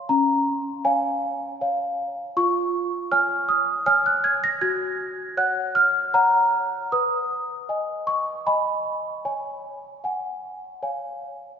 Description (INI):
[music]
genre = classical, lullaby for celesta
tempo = 78 BPM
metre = 3/4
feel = straight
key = unclear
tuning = A4 = 441 Hz
[part]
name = small celesta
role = solo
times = 0.0-11.6 s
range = Db4 to A#6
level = -21 LUFS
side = equal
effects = none
[sound]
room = wet church reverb, RT60 3.3 s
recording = recorded in a church or concert hall, nothing above 7.5 kHz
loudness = -21 LUFS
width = side -7 dB against mid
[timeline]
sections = 0.0-11.6 A section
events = none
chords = 0.1 Bbm/Db; 2.4 C#/E#; 4.6 F#; 6.9 G#m/B; 9.2 C#sus4; 10.8 C#